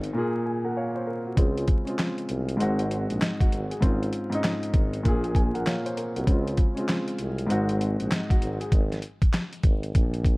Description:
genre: hip hop, boom-bap hip-hop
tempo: 98 BPM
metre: 4/4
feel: swing 63% on 16ths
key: Db major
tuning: A4 = 439 Hz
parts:
  - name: dark concert grand piano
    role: accompaniment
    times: 0.0-8.7 s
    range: Ab2 to Ab5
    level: -27 LUFS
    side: equal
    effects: cassette tape, high-pass filter, low-pass filter
  - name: warm tuba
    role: bass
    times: 0.0-10.4 s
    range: Ab1 to Db2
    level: -30 LUFS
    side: equal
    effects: none
  - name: boom bap sampler-style drum kit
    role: drums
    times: 0.0-10.4 s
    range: handclaps, hi-hat, kick drum, snare drum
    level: -23 LUFS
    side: equal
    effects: none
room: small room ambience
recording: dark, warm production, vinyl crackle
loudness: -23 LUFS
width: side -25 dB against mid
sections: 0.0-10.4 A section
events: drums muted 0.1-1.4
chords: 0.1 Bbm9; 1.4 Dbmaj7; 2.6 Ab7; 3.8 Dbmaj7/Ab; 5.0 Bbm9; 6.3 Dbmaj7; 7.5 Ab7; 8.7 N.C.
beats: 0.15 0.76 | 1.37 1.99 2.60 3.21 | 3.82 4.43 5.05 5.66 | 6.27 6.88 7.50 8.11 | 8.72 9.33 9.95

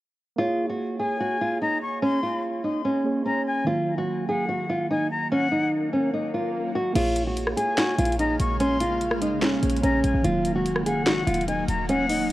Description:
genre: hip hop, trap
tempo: 146 BPM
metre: 4/4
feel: half-time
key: Bb minor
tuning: A4 = 436 Hz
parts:
  - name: nylon-string guitar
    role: melody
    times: 0.4-12.3 s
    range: Db4 to Ab4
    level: -25 LUFS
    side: equal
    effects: low-pass filter, ping-pong delay
  - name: muted felt-like synth keys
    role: accompaniment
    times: 0.4-12.3 s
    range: Eb3 to Db5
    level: -31 LUFS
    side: right 2 dB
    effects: chorus, low-pass filter
  - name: jazz flute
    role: second line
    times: 1.0-12.3 s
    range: Gb5 to Db6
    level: -29 LUFS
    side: left 3 dB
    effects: ping-pong delay
  - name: swell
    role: sound effects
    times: 5.6-7.0 s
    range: none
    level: -37 LUFS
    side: left 6 dB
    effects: none
  - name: granular cloud pad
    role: sustained chords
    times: 7.9-12.3 s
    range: Db3 to F5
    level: -33 LUFS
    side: right 1 dB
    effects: built-in reverb
  - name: short 808-style bass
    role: bass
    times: 7.0-12.3 s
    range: Eb1 to Bb1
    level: -28 LUFS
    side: equal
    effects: none
  - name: trap drum kit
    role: drums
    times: 7.0-12.3 s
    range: crash cymbal, finger snaps, hi-hat, rim click, snare drum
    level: -28 LUFS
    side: equal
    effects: none
room: light reverb, digital ambience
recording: worn, warbling old tape, cassette tape, warbly pitch drift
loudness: -22 LUFS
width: side -16 dB against mid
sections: 0.4-7.0 A section; 7.0-12.3 B section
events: swell 5.6-7.0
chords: 0.4 Bbm7; 3.7 Ebm; 7.0 Bbm7; 10.2 Ebm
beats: | 0.38 0.79 1.20 1.61 | 2.02 2.44 2.85 3.26 | 3.67 4.08 4.49 4.90 | 5.31 5.72 6.13 6.55 | 6.96 7.37 7.78 8.19 | 8.60 9.01 9.42 9.83 | 10.24 10.65 11.07 11.48 | 11.89 12.30

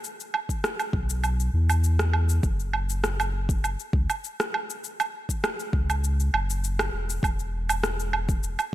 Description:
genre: organic downtempo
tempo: 100 BPM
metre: 4/4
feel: straight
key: unclear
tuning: A4 = 440 Hz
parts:
  - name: electronic cabasa, woodblock and rim click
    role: drums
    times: 0.0-8.7 s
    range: none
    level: -28 LUFS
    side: right 2 dB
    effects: none
  - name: electronic kick drum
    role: drums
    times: 0.5-8.4 s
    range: none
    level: -26 LUFS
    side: equal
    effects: none
  - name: warm sub bass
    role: bass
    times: 0.9-8.6 s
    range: E1 to E2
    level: -25 LUFS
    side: equal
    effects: sidechain pumping
room: light reverb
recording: none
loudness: -24 LUFS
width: side -15 dB against mid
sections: 0.0-8.7 A section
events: none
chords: none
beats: | 0.04 0.64 1.24 1.83 | 2.44 3.04 3.63 4.24 | 4.83 5.43 6.04 6.63 | 7.24 7.83 8.44

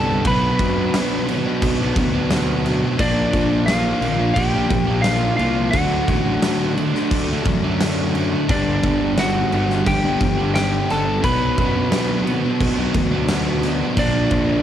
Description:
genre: quiet-loud alternative rock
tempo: 87 BPM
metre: 4/4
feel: straight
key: unclear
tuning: A4 = 440 Hz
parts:
  - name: lightly driven lead guitar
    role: melody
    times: 0.0-14.6 s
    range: D4 to B5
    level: -22 LUFS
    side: equal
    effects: cassette tape
  - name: overdriven electric guitar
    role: riff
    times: 0.0-14.6 s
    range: G2 to D4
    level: -27 LUFS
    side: equal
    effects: cassette tape
  - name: thick fuzz guitar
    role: riff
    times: 0.0-14.6 s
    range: G2 to D4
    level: -24 LUFS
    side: left 7 dB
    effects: distortion, cassette tape
  - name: thick fuzz guitar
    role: riff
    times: 0.0-14.6 s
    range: G2 to D4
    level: -24 LUFS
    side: right 7 dB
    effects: distortion, cassette tape
  - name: fuzz fingered electric bass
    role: bass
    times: 0.0-14.6 s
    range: G1 to F#2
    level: -24 LUFS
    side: equal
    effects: overdrive
  - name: huge arena drum kit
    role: drums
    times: 0.2-14.5 s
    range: crash cymbal, kick drum, snare drum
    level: -24 LUFS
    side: equal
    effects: cassette tape
room: small room ambience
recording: home recording on cassette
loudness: -16 LUFS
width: side -10 dB against mid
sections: 0.0-14.6 A section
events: none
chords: 0.2 Bm; 3.0 Bb; 5.7 D; 8.5 G; 11.2 Bm; 14.0 Bb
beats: | 0.25 0.94 1.62 2.31 | 2.99 3.68 4.37 5.05 | 5.74 6.43 7.12 7.80 | 8.49 9.18 9.87 10.55 | 11.24 11.92 12.61 13.29 | 13.98

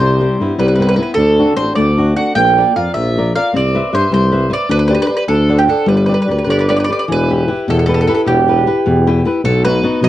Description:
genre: italian folk, Italian serenade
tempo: 102 BPM (dotted quarters)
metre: 6/8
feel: straight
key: G major, E minor from 7.1 s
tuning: A4 = 440 Hz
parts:
  - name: mandolin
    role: melody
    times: 0.0-10.1 s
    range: G4 to G5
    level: -16 LUFS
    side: right 3 dB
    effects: none
  - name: flamenco guitar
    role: accompaniment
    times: 0.0-10.1 s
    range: B2 to G5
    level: -16 LUFS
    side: left 2 dB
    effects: none
  - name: warm tuba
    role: bass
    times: 0.0-10.1 s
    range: E1 to B2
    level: -15 LUFS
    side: equal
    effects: transformer saturation
room: light reverb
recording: worn, warbling old tape, cassette tape, warbly pitch drift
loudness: -11 LUFS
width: side -13 dB against mid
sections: 0.0-7.1 A section; 7.1-10.1 B section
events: nylon-string guitar fill 8.8-9.4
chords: 0.0 Cmaj7; 1.2 D7; 2.4 Bb; 3.5 Cmaj7; 4.7 D7sus4; 5.3 D7; 5.9 G; 7.1 Em; 9.4 B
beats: 0.58 | 1.16 1.76 | 2.35 2.95 | 3.54 4.12 | 4.70 5.29 | 5.88 6.47 | 7.08 7.67 | 8.26 8.85 | 9.43 10.02

